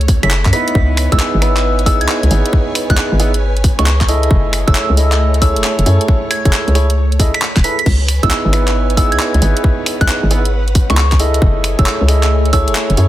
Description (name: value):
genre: UK garage, two-step garage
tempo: 135 BPM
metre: 4/4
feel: swing 66% on 16ths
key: C# minor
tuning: A4 = 439 Hz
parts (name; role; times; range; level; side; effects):
- soft string machine; sustained chords; 0.0-13.1 s; A3 to G#5; -26 LUFS; equal; ensemble chorus, sidechain pumping
- hollow knocking FM bass; bass; 0.0-13.1 s; E1 to F#2; -14 LUFS; equal; none
- garage drum kit; drums; 0.0-13.1 s; crash cymbal, finger snaps, handclaps, hi-hat; -19 LUFS; equal; overdrive, studio ambience
- electronic kick drum; drums; 0.1-12.6 s; none; -15 LUFS; equal; studio ambience
- soft synth bell; melody; 0.2-12.6 s; C#6 to B6; -22 LUFS; right 1 dB; chorus, phaser, tape echo
- warm baby grand piano; stabs; 0.2-13.1 s; B3 to D#5; -19 LUFS; right 1 dB; vintage 12-bit sampler grit, tape echo
room: little or no reverb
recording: dense, heavily limited modern master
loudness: -11 LUFS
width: side -14 dB against mid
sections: 0.0-13.1 A section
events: none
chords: 0.0 F#m7; 0.8 C#m9; 4.3 F#m9; 7.9 C#m9; 11.4 F#m9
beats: 0.31 | 0.75 1.20 1.64 2.08 | 2.53 2.97 3.42 3.86 | 4.31 4.75 5.20 5.64 | 6.08 6.53 6.97 7.42 | 7.86 8.31 8.75 9.20 | 9.64 10.09 10.53 10.97 | 11.42 11.86 12.31 12.75